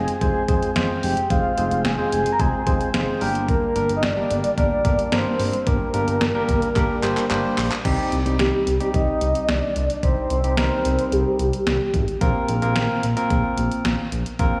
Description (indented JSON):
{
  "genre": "synth-pop",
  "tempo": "110 BPM",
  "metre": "4/4",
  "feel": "straight",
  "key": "C minor",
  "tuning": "A4 = 440 Hz",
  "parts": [
    { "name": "soft octave-layered synth lead", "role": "melody", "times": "0.0-12.0 s", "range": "G4 to Bb5", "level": "-26 LUFS", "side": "equal", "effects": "chorus, tremolo, slapback echo" },
    { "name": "barky tine electric piano", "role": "accompaniment", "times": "0.0-14.6 s", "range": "G3 to Eb5", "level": "-27 LUFS", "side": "equal", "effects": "slapback echo" },
    { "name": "smooth synth bass", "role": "bass", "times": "0.0-14.5 s", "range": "F1 to C2", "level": "-27 LUFS", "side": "equal", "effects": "none" },
    { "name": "detuned 8-bit digital drum machine", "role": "drums", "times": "0.1-14.5 s", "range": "crash cymbal, handclaps, hi-hat, kick drum, snare drum", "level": "-27 LUFS", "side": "equal", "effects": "none" }
  ],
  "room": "moderate lush hall reverb, RT60 2.0 s",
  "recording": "big arena sound, small room reverb",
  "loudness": "-21 LUFS",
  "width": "mono",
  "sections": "0.0-7.8 A section; 7.8-14.6 B section",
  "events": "drum fill 6.8-7.8",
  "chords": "0.0 Fm; 3.2 Gm; 7.8 Cm; 12.2 Bbsus2",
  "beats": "0.21 0.76 | 1.30 1.85 2.40 2.94 | 3.49 4.03 4.58 5.12 | 5.67 6.21 6.76 7.30 | 7.85 8.39 8.94 9.49 | 10.03 10.58 11.12 11.67 | 12.21 12.76 13.30 13.85 | 14.39"
}